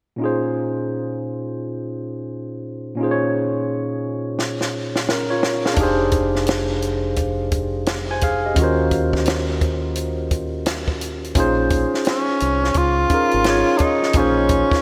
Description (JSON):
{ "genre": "R&B, neo-soul", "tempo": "86 BPM", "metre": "4/4", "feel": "swing 63% on 16ths", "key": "Bb minor", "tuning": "A4 = 440 Hz", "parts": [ { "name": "barky tine electric piano", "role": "accompaniment", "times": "0.2-14.8 s", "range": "Bb2 to Ab5", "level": "-23 LUFS", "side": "equal", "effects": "none" }, { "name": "compact cocktail drum kit", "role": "drums", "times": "4.4-14.8 s", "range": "hi-hat, kick drum, snare drum", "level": "-25 LUFS", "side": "equal", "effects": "none" }, { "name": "deep dub fingered electric bass", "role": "bass", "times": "5.8-14.6 s", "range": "F1 to Eb2", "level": "-27 LUFS", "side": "equal", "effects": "none" }, { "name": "breathy tenor saxophone", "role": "melody", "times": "12.1-14.8 s", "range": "Db4 to F4", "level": "-21 LUFS", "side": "equal", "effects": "slapback echo" } ], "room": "moderate lush hall reverb, RT60 2.6 s", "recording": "big arena sound", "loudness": "-20 LUFS", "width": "mono", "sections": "0.2-11.4 A section; 11.4-14.8 B section", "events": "drum fill 4.4-5.8", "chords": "0.2 Bbm9; 5.8 Fm9; 8.6 Ebm9; 11.4 Bbm9" }